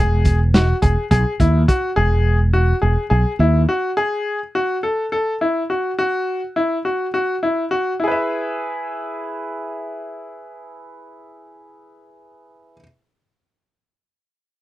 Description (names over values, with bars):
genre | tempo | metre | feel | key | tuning
progressive instrumental, band music in an uneven meter | 209 BPM (eighths) | 7/8 | straight | E major | A4 = 440 Hz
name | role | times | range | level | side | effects
bright grand piano | arpeggios | 0.0-12.8 s | E4 to E5 | -20 LUFS | left 1 dB | none
mellow fretless electric bass | bass | 0.0-3.6 s | E1 to D#2 | -15 LUFS | equal | analog chorus
crunchy breakbeat drum kit | drums | 0.2-1.8 s | hi-hat, kick drum, snare drum | -17 LUFS | equal | none
room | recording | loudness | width
little or no reverb | dry, close 1970s-style studio recording | -17 LUFS | side -16 dB against mid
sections
0.0-8.0 A section; 8.0-12.0 B section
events
none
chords
0.0 Emaj7; 4.0 Eadd9; 6.0 Esus2; 8.0 E